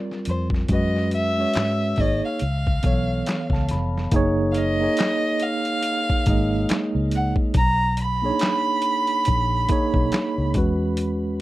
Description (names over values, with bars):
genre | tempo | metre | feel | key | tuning
R&B, neo-soul | 70 BPM | 4/4 | swing 58% on 16ths | unclear | A4 = 440 Hz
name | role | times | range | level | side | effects
mellow tine electric piano | accompaniment | 0.0-11.4 s | E3 to Cb6 | -24 LUFS | right 2 dB | fast stereo tremolo
boom bap sampler-style drum kit | drums | 0.1-11.2 s | handclaps, hi-hat, kick drum, snare drum | -24 LUFS | left 1 dB | none
dark fiddle | melody | 0.3-10.5 s | C5 to B5 | -25 LUFS | right 1 dB | none
vintage muted fingered electric bass | bass | 0.3-11.4 s | F1 to Ab2 | -24 LUFS | left 1 dB | none
room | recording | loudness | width
light reverb | none | -19 LUFS | side -16 dB against mid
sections
0.0-4.1 A section; 4.1-11.4 B section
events
tine electric piano fill 2.8-4.1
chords
0.0 Fsus24; 0.7 Gb9sus4; 2.0 Absus24; 2.4 Db7alt; 4.1 Gbmaj9; 7.5 Bmaj9; 10.5 Eadd9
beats
| 0.69 1.55 2.41 3.26 | 4.12 4.98 5.83 6.69 | 7.55 8.41 9.26 10.12 | 10.98